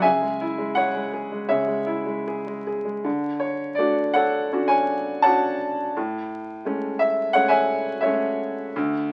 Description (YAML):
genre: classical, lyrical solo piano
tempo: 74-87 BPM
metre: 4/4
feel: rubato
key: A major from 3.0 s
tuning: A4 = 439 Hz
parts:
  - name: clear grand piano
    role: solo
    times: 0.0-9.1 s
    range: D2 to A5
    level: -24 LUFS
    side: equal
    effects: none
room: moderate studio reverb, RT60 0.8 s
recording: very old 78 rpm record, vinyl crackle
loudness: -24 LUFS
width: mono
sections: 0.0-3.0 A section; 3.0-9.1 B section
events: none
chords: 0.0 C#m; 3.0 Dmaj7; 6.0 Amaj7